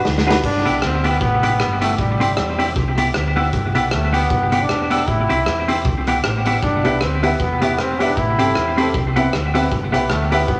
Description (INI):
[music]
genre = ska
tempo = 155 BPM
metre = 4/4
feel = swing 57% on 8ths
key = G major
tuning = A4 = 440 Hz
[part]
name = fingered electric bass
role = bass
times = 0.1-10.6 s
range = E1 to E2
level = -25 LUFS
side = equal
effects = tube saturation
[part]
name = raw garage drum kit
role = drums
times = 0.1-10.6 s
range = crash cymbal, hi-hat, kick drum, rim click, snare drum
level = -25 LUFS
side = equal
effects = tape echo
[part]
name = clean electric guitar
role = accompaniment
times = 0.3-10.4 s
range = B3 to B4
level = -23 LUFS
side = equal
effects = spring reverb, tape echo
[part]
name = dark upright piano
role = stabs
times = 0.3-0.4, 6.8-10.4 s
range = C4 to B4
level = -25 LUFS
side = equal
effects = none
[part]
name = brilliant trombone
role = melody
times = 0.4-10.6 s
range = G3 to E4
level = -24 LUFS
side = equal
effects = none
[sound]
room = wet studio reverb, RT60 0.8 s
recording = none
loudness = -18 LUFS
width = mono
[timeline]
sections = 0.4-10.6 A section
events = drum fill 0.0-0.4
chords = 0.4 G6; 2.0 Am7; 2.8 Cmaj7; 3.5 G6; 5.1 Am7; 5.9 Cmaj7; 6.6 G6; 8.2 Am7; 8.9 Cmaj7; 9.7 G6